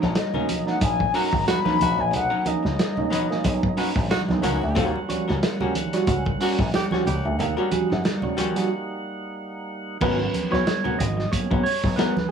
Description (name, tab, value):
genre	funk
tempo	91 BPM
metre	4/4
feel	swing 56% on 16ths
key	unclear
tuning	A4 = 437 Hz
part	archtop guitar, miked and amplified	accompaniment	0.0-12.2 s	F#3 to C#5	-29 LUFS	left 7 dB	none
part	percussive tonewheel organ	sustained chords	0.0-10.0 s	F#3 to F#5	-33 LUFS	right 1 dB	slow rotary speaker
part	slap bass with an envelope filter	bass	0.0-11.9 s	G#1 to F#2	-24 LUFS	equal	none
part	vintage drum kit	drums	0.0-12.2 s	crash cymbal, hi-hat, kick drum, snare drum	-26 LUFS	equal	none
part	mellow jazz flute	melody	0.2-3.8 s	D#5 to B5	-25 LUFS	left 6 dB	none
part	barky tine electric piano	stabs	0.3-12.3 s	B2 to D#5	-27 LUFS	right 6 dB	overdrive, phaser
part	congas	percussion	0.3-12.3 s	none	-31 LUFS	right 4 dB	none
part	growling tenor saxophone	second line	1.2-7.3 s	F#4 to G4	-30 LUFS	right 6 dB	none
room	light reverb, small room ambience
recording	none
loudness	-20 LUFS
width	side -7 dB against mid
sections	0.0-10.0 A section; 10.0-12.3 B section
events	break 8.7-10.0; tine electric piano solo 10.0-12.3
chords	0.0 Bmaj9; 4.8 D#7#9; 10.0 G#m11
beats	0.17 0.82 1.48 | 2.14 2.80 3.45 4.11 | 4.77 5.42 6.08 6.74 | 7.39 8.05 8.70 9.36 | 10.02 10.67 11.33 11.98